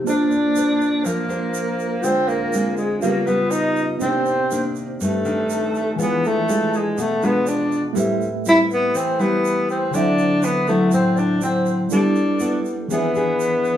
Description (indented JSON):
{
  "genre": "bossa nova",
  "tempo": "122 BPM",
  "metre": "4/4",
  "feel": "straight",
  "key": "unclear",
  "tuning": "A4 = 440 Hz",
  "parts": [
    { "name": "nylon-string guitar", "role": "accompaniment", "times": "0.0-13.8 s", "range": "G2 to C5", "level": "-22 LUFS", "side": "left 1 dB", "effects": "none" },
    { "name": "tine electric piano", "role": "accompaniment", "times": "0.0-13.8 s", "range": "D3 to A5", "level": "-27 LUFS", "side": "right 3 dB", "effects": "medium stereo tremolo" },
    { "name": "breathy tenor saxophone", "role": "melody", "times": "0.1-13.8 s", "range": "Ab3 to E4", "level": "-20 LUFS", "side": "equal", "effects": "none" },
    { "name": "concert flute", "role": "second line", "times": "0.1-13.8 s", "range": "G#4 to E5", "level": "-29 LUFS", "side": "left 3 dB", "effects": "none" },
    { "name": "egg shaker", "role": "percussion", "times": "0.1-13.8 s", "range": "none", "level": "-37 LUFS", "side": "right 6 dB", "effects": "none" }
  ],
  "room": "moderate stone room reverb, RT60 1.2 s",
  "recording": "band playing live in one room, studio reverb",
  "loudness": "-17 LUFS",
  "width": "side -10 dB against mid",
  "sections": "0.0-13.8 A section",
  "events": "none",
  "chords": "0.1 Bbmaj9; 2.0 Dm7b5; 3.0 C#7#11; 4.0 Cm9; 6.0 E7b9; 8.0 Am7; 9.9 D9; 11.9 G69; 12.9 E7b13"
}